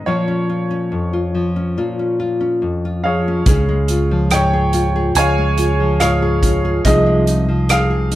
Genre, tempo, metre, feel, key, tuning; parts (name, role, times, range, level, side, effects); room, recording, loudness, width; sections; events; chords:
acoustic folk-pop ballad; 71 BPM; 4/4; straight; A4 = 441 Hz
clear concert grand piano; melody; 0.0-8.2 s; Ab4 to Ab5; -20 LUFS; right 1 dB; plate reverb
nylon-string guitar; accompaniment; 0.0-8.2 s; F2 to Ab4; -19 LUFS; left 2 dB
mellow fretless electric bass; bass; 3.5-8.2 s; C2 to Db2; -17 LUFS; right 1 dB
natural country drum kit; drums; 3.5-8.2 s; hi-hat, kick drum, rim click; -18 LUFS; right 1 dB
vibraphone with medium hard mallets; arpeggios; 5.2-7.2 s; F4 to Ab4; -22 LUFS; right 2 dB
moderate studio reverb, RT60 0.8 s; -14 LUFS; side -14 dB against mid
0.0-3.5 A section; 3.5-8.2 B section
0.1 Bbm; 3.5 Db; 6.9 Fm7/C